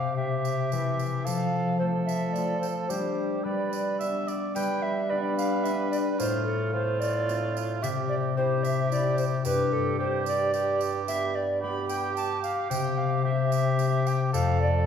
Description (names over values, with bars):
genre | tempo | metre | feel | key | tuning
classical, renaissance-style consort dance | 110 BPM | 3/4 | straight | unclear | A4 = 440 Hz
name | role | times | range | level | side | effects
hollow tenor recorder | melody | 0.0-14.9 s | A4 to B5 | -30 LUFS | equal | none
warm cor anglais | second line | 0.0-14.9 s | F4 to E5 | -32 LUFS | right 5 dB | none
concert harp | accompaniment | 0.0-14.9 s | F2 to G4 | -28 LUFS | left 5 dB | none
clear bassoon | bass | 0.0-14.9 s | F2 to G3 | -33 LUFS | right 2 dB | none
tambourine | percussion | 0.4-14.6 s | none | -44 LUFS | right 8 dB | none
room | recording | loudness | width
wet recital hall reverb, RT60 1.5 s | heard from further back in the room | -24 LUFS | side -7 dB against mid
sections
0.0-4.6 A section; 4.6-14.9 A section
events
none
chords
0.0 C; 1.3 F; 2.9 Gsus4; 3.5 G; 6.2 F/A; 7.8 C; 9.5 Gsus4; 10.5 G; 12.7 C; 14.3 F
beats
0.18 0.72 | 1.26 1.80 2.35 | 2.90 3.45 4.00 | 4.56 5.10 5.65 | 6.19 6.74 7.28 | 7.83 8.37 8.91 | 9.45 9.99 10.54 | 11.08 11.62 12.16 | 12.70 13.24 13.79 | 14.33